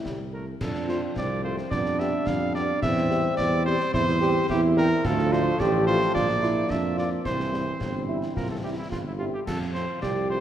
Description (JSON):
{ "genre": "military-style march for wind band", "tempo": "108 BPM", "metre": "2/4", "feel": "straight", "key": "F major", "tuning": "A4 = 440 Hz", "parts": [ { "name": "dark French horn section", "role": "accompaniment", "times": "0.0-10.4 s", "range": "G3 to G4", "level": "-35 LUFS", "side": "left 4 dB", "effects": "none" }, { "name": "warm trombone section", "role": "sustained chords", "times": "0.0-10.4 s", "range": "E3 to C4", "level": "-34 LUFS", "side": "right 2 dB", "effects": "none" }, { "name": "dark tuba", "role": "bass", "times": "0.1-10.4 s", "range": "G1 to F2", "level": "-28 LUFS", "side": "right 1 dB", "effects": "none" }, { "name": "concert snare drum, concert bass drum and clash cymbals", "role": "drums", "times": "0.1-10.2 s", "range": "none", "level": "-35 LUFS", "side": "left 1 dB", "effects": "none" }, { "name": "mellow cornet", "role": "melody", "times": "0.3-10.4 s", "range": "E4 to F5", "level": "-28 LUFS", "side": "equal", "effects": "none" }, { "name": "warm euphonium", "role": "second line", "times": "0.6-10.4 s", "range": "C4 to G4", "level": "-28 LUFS", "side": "right 2 dB", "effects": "none" } ], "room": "wet scoring stage reverb, RT60 1.9 s", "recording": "none", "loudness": "-22 LUFS", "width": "side -10 dB against mid", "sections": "0.6-10.4 A section", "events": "none", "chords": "0.0 C; 0.6 F; 1.7 G7/F; 2.8 C/E; 5.0 Dm; 6.2 Bb; 7.3 C; 9.5 F" }